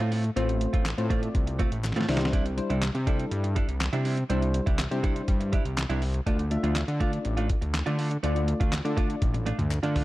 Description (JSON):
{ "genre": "dance-pop", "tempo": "122 BPM", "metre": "4/4", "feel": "straight", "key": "unclear", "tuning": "A4 = 441 Hz", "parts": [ { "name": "direct-recorded clean electric guitar", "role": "riff", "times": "0.0-10.0 s", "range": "G3 to F4", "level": "-34 LUFS", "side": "right 4 dB", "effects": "lush chorus" }, { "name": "fat analog bass", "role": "bass", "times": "0.0-10.0 s", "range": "A1 to D3", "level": "-28 LUFS", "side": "equal", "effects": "sidechain pumping" }, { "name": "lo-fi sampler-style drum kit", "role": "drums", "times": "0.0-10.0 s", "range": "handclaps, hi-hat, kick drum, snare drum, toms", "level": "-28 LUFS", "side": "equal", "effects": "none" }, { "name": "soft electric-piano-like synth keys", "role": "accompaniment", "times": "0.4-9.5 s", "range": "G3 to E5", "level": "-32 LUFS", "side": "left 2 dB", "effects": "chorus, sidechain pumping" }, { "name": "group handclap", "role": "percussion", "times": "0.9-9.8 s", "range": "none", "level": "-43 LUFS", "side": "left 5 dB", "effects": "none" } ], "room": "little or no reverb", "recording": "dark, warm production", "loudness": "-24 LUFS", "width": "side -17 dB against mid", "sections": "0.0-10.0 A section", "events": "drum fill 1.8-2.3, 9.2-10.0", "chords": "0.0 F/A; 2.1 Cadd9; 6.3 Dm" }